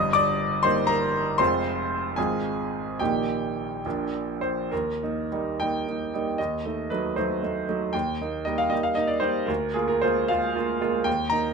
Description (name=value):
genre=classical, romantic character piece for solo piano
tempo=67-81 BPM (dotted quarters)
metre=6/8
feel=rubato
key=Eb major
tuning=A4 = 440 Hz
part: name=bright grand piano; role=solo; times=0.0-11.5 s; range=F1 to Eb6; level=-23 LUFS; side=right 1 dB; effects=none
room=moderate studio reverb, RT60 0.6 s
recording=minimal, uncompressed stereo recording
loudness=-23 LUFS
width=side -5 dB against mid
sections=0.0-4.7 A section; 4.7-11.5 B section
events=none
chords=0.0 Eb/G; 1.4 Fm; 2.2 Fm/Ab; 3.0 Eb/Bb; 3.8 Bb; 4.7 Eb; 6.4 Ebdim7; 7.9 Eb; 9.5 Bb7/D